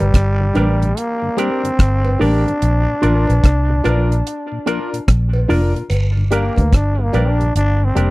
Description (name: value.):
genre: roots reggae.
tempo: 73 BPM.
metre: 4/4.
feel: swing 64% on 16ths.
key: G minor.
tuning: A4 = 440 Hz.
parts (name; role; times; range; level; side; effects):
growling trombone; melody; 0.0-8.1 s; G3 to D4; -21 LUFS; equal; tape echo.
mellow tonewheel organ; accompaniment; 0.0-8.1 s; G2 to D4; -25 LUFS; left 1 dB; slow rotary speaker.
vintage muted fingered electric bass; bass; 0.0-8.1 s; F1 to D2; -16 LUFS; equal; none.
deep reggae drum kit; drums; 0.1-8.1 s; hi-hat, kick drum, rim click; -15 LUFS; equal; none.
electric guitar with an envelope filter; accompaniment; 0.4-8.1 s; D4 to D5; -24 LUFS; right 4 dB; tape echo.
warm concert grand piano; stabs; 0.5-8.1 s; D4 to Bb4; -23 LUFS; left 4 dB; none.
cowbell and jawbone-type rattle; percussion; 0.6-7.4 s; none; -28 LUFS; right 3 dB; none.
room: little or no reverb.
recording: dry, close 1970s-style studio recording.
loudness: -14 LUFS.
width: side -20 dB against mid.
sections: 0.0-5.9 A section; 5.9-8.1 B section.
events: trombone solo 5.9-8.1.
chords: 0.0 Gm; 2.6 Bb; 5.9 Gm.